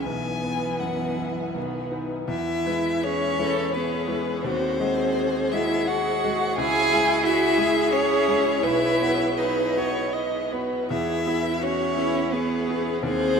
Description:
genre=classical, slow romantic movement for piano quartet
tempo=78-91 BPM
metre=3/4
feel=rubato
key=E major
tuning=A4 = 445 Hz
part: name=rich violin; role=melody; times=0.0-13.4 s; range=B4 to G#5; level=-27 LUFS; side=left 6 dB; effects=none
part: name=rich cello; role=second line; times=0.0-13.4 s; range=D#3 to G#4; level=-26 LUFS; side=right 4 dB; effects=none
part: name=bright grand piano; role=accompaniment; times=0.0-13.4 s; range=B1 to E5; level=-29 LUFS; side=left 3 dB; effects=none
part: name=rich viola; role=accompaniment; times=0.0-13.4 s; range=B3 to D#5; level=-28 LUFS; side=right 2 dB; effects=none
room=wet huge ambient reverb, RT60 8.5 s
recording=in a vast, echoing space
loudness=-21 LUFS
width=side -6 dB against mid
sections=0.0-2.3 A section; 2.3-13.4 B section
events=none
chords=0.1 Bsus4; 1.6 B; 2.3 E; 4.5 G#7/D#; 6.6 C#m; 8.6 B; 10.9 E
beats=| 0.07 0.83 1.56 | 2.31 3.05 3.76 | 4.46 5.18 5.89 | 6.58 7.25 7.92 | 8.63 9.38 10.15 | 10.91 11.62 12.33 | 13.03

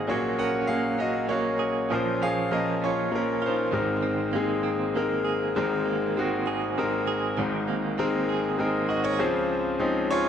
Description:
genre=acoustic folk-pop ballad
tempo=99 BPM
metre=3/4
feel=straight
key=unclear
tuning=A4 = 440 Hz
part: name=bright grand piano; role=melody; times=0.0-10.3 s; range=Ab1 to Gb5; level=-24 LUFS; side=left 2 dB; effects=none
part: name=direct-recorded clean electric guitar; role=arpeggios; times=0.0-9.3 s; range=Eb3 to Ab4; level=-31 LUFS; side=right 7 dB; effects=tremolo
room=moderate scoring stage reverb, RT60 1.9 s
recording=none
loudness=-24 LUFS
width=side -8 dB against mid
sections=0.0-5.6 A section; 5.6-9.2 B section; 9.2-10.3 C section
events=none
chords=0.1 Gbadd9/Bb; 1.9 Bbm; 3.7 Abadd9; 9.2 Dbmaj7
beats=| 0.08 0.69 1.29 | 1.90 2.51 3.12 | 3.73 4.34 4.95 | 5.56 6.17 6.78 | 7.38 7.99 8.59 | 9.20 9.80

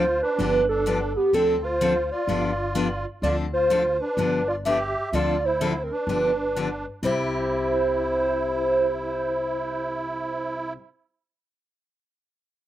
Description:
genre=acoustic string swing (jazz manouche)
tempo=126 BPM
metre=4/4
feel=swing 63% on 8ths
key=C major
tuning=A4 = 440 Hz
part: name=pure sine lead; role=melody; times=0.0-10.7 s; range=G4 to E5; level=-24 LUFS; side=right 1 dB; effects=chorus, phaser, slapback echo
part: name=musette accordion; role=second line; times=0.0-10.7 s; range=B3 to G4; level=-30 LUFS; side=right 2 dB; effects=slapback echo
part: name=picked steel-string acoustic guitar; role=accompaniment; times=0.0-10.8 s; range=C3 to A4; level=-28 LUFS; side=left 4 dB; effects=none
part: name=upright bass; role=bass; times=0.0-10.7 s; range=G1 to D2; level=-32 LUFS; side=equal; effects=none
room=little or no reverb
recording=recorded outdoors, with no room sound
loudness=-22 LUFS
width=side -13 dB against mid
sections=0.0-7.0 A section; 7.0-10.8 B section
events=none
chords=0.4 G7; 1.3 Dm7; 2.3 G7; 3.2 Dm7; 4.2 G7; 5.1 Dm7; 6.1 G7; 7.0 C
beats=0.39 0.86 | 1.33 1.80 2.28 2.75 | 3.23 3.70 4.18 4.65 | 5.13 5.60 6.08 6.55 | 7.03 7.50 7.98 8.45 | 8.93 9.40 9.87 10.35

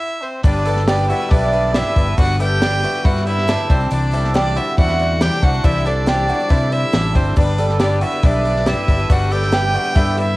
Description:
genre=indie folk with a building arrangement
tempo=139 BPM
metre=4/4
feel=straight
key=G major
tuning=A4 = 440 Hz
part: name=rich fiddle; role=melody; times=0.0-10.4 s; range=C5 to G5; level=-23 LUFS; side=right 2 dB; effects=cassette tape
part: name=warm trumpet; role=second line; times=0.0-10.4 s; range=C4 to G4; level=-26 LUFS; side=left 3 dB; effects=cassette tape
part: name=bright upright piano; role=accompaniment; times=0.4-10.4 s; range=G1 to E5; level=-26 LUFS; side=left 3 dB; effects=cassette tape
part: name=picked twelve-string acoustic guitar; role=accompaniment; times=0.4-10.4 s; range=G2 to B4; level=-27 LUFS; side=left 2 dB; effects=cassette tape
part: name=mellow tonewheel organ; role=sustained chords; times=0.4-10.4 s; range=D3 to G4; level=-32 LUFS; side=right 1 dB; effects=none
part: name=fingered electric bass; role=bass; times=0.4-10.4 s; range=G1 to C3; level=-20 LUFS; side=equal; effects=none
part: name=compact cocktail drum kit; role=drums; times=0.4-10.3 s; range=hi-hat, kick drum, snare drum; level=-17 LUFS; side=equal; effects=cassette tape
part: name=mandolin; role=arpeggios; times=0.7-10.4 s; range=D4 to A4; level=-23 LUFS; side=right 3 dB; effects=cassette tape
room=light reverb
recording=home recording on cassette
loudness=-14 LUFS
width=side -19 dB against mid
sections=0.4-10.4 A section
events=stop 0.0-0.4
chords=0.4 G; 3.7 Cadd9; 7.4 G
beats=0.01 | 0.44 0.88 1.31 1.75 | 2.18 2.61 3.05 3.48 | 3.91 4.35 4.78 5.21 | 5.64 6.08 6.51 6.94 | 7.37 7.80 8.23 8.66 | 9.09 9.53 9.96

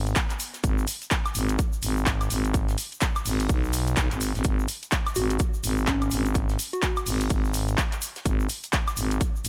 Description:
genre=bass house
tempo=126 BPM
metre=4/4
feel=swing 60% on 16ths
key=G# minor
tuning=A4 = 439 Hz
part: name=growling FM bass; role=bass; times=0.0-9.5 s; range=G#1 to B1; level=-28 LUFS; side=equal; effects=tube saturation, sidechain pumping
part: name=house drum kit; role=drums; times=0.1-9.5 s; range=handclaps, hi-hat, woodblock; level=-32 LUFS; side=equal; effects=overdrive
part: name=egg shaker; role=percussion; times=0.1-9.5 s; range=none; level=-40 LUFS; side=equal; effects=none
part: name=damped 70s drum kit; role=drums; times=0.2-9.5 s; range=hi-hat, shaker, snare drum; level=-43 LUFS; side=equal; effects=none
part: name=electronic kick drum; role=drums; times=0.2-9.3 s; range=none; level=-28 LUFS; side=equal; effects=overdrive
part: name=soft struck synth lead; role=melody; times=5.2-7.2 s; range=C#4 to F#4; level=-34 LUFS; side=equal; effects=chorus, delay
room=small room reverb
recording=none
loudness=-26 LUFS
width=mono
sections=0.0-9.5 A section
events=none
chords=none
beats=0.16 | 0.64 1.11 1.59 2.06 | 2.54 3.02 3.49 3.97 | 4.45 4.92 5.40 5.88 | 6.35 6.83 7.30 7.78 | 8.26 8.73 9.21

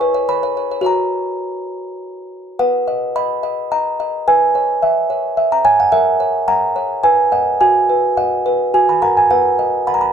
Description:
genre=classical, lullaby for music box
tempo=106 BPM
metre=3/4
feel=straight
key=B major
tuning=A4 = 439 Hz
part: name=music box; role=solo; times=0.0-10.1 s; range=E4 to C#6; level=-14 LUFS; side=right 1 dB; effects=none
room=light reverb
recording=dark, warm production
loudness=-13 LUFS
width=side -8 dB against mid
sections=0.0-2.6 A section; 2.6-10.1 B section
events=none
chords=0.0 C#m/E; 0.9 F#; 2.6 B; 4.3 C#m7/B; 5.9 F#7/A#; 7.0 B; 7.6 B/F#; 8.7 F#; 9.3 B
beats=0.29 | 0.86 1.44 2.01 | 2.59 3.16 3.72 | 4.27 4.83 5.37 | 5.92 6.47 7.04 | 7.60 8.17 8.74 | 9.31 9.87

